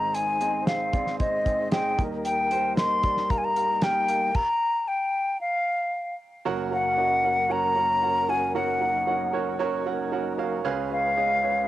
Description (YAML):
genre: piano-driven pop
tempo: 114 BPM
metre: 4/4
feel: straight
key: Eb major, F# major from 6.5 s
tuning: A4 = 439 Hz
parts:
  - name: hollow concert flute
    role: melody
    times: 0.0-11.7 s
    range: Eb5 to C6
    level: -24 LUFS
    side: left 1 dB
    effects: none
  - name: warm concert grand piano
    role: accompaniment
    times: 0.0-11.7 s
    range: F#1 to F#5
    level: -29 LUFS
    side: right 7 dB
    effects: cassette tape
  - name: tonewheel organ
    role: sustained chords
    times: 0.0-11.7 s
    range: F#3 to C5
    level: -34 LUFS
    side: left 6 dB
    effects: chorus vibrato, wide subtle chorus, cassette tape
  - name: damped 70s drum kit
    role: drums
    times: 0.1-4.5 s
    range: crash cymbal, hi-hat, kick drum, snare drum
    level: -27 LUFS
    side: equal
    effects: none
room: light reverb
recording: home recording on cassette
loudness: -22 LUFS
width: side -14 dB against mid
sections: 0.0-6.5 A section; 6.5-11.7 B section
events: stop 4.3-6.5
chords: 0.0 Ab; 2.0 Eb; 4.3 N.C.; 6.5 F#; 10.6 C#7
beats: | 0.15 0.67 1.20 1.72 | 2.25 2.77 3.30 3.83 | 4.35 4.88 5.40 5.93 | 6.45 6.98 7.50 8.03 | 8.55 9.07 9.60 10.12 | 10.65 11.17